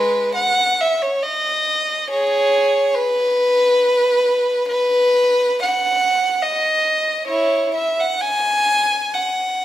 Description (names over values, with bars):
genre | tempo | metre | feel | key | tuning
classical, free, expressive piece for unaccompanied violin | 62-75 BPM | 3/4 | rubato | B major | A4 = 439 Hz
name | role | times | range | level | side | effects
warm violin | solo | 0.0-9.6 s | G#3 to G#5 | -15 LUFS | equal | none
room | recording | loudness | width
moderate recital hall reverb, RT60 1.4 s | none | -15 LUFS | side -13 dB against mid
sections
0.0-9.6 A section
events
none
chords
none